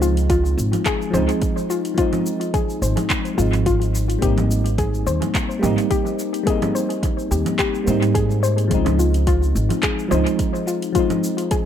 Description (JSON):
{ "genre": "sunset chillout", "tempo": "107 BPM", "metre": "4/4", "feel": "swing 55% on 16ths", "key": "unclear", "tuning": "A4 = 444 Hz", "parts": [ { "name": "mellow FM electric piano", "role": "accompaniment", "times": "0.0-11.7 s", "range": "F3 to Eb4", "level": "-22 LUFS", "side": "moving between left 5 dB and right 4 dB", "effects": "chorus, auto-pan, analog delay" }, { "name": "soft round pluck", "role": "arpeggios", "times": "0.0-11.7 s", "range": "F4 to C5", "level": "-25 LUFS", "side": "left 5 dB", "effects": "chorus, analog delay" }, { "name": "upright bass", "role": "bass", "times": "0.0-10.2 s", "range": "Ab1 to Ab2", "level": "-20 LUFS", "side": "right 1 dB", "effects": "none" }, { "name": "deep house drum kit", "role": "drums", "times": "0.0-11.6 s", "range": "congas, handclaps, hi-hat, shaker", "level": "-27 LUFS", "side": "right 3 dB", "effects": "overdrive, analog delay" }, { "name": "electronic kick drum", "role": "drums", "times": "0.3-11.6 s", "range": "none", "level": "-23 LUFS", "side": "right 1 dB", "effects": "overdrive" } ], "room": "light reverb", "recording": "echo-heavy mix", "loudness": "-17 LUFS", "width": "side -9 dB against mid", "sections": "0.0-11.7 A section", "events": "none", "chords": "0.0 Dbmaj7; 4.2 Abmaj7; 8.7 Dbmaj7" }